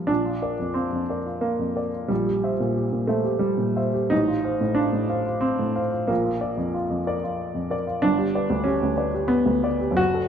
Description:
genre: classical, romantic character piece for solo piano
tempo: 91 BPM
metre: 3/4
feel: uneven beats, rubato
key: Bb major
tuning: A4 = 440 Hz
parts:
  - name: warm upright piano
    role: solo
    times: 0.0-10.3 s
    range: F#1 to F5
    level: -21 LUFS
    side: equal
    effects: none
room: moderate recital hall reverb, RT60 1.5 s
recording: dark, warm production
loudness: -21 LUFS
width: side -8 dB against mid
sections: 0.1-10.3 A section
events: none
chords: 0.1 Bb; 2.1 C7/Bb; 4.1 F7/A; 6.1 Bb; 8.0 G

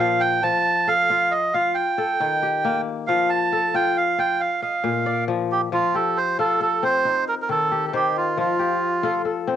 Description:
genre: west african traditional, West African string and xylophone music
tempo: 91 BPM (dotted quarters)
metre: 12/8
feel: straight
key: F mixolydian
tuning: A4 = 439 Hz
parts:
  - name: melodica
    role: melody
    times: 0.0-9.2 s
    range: F4 to A5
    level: -20 LUFS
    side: right 4 dB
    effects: cassette tape
  - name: kora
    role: arpeggios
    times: 0.0-9.6 s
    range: Bb2 to Eb5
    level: -24 LUFS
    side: left 7 dB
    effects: cassette tape
room: moderate small room reverb, RT60 0.6 s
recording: home recording on cassette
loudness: -19 LUFS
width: side -10 dB against mid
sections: 0.0-5.7 A section; 5.7-9.6 B section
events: melodica solo 0.0-5.7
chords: 0.4 F; 1.8 Eb; 3.1 F; 4.4 Bb; 5.7 F; 7.0 Eb; 8.4 F

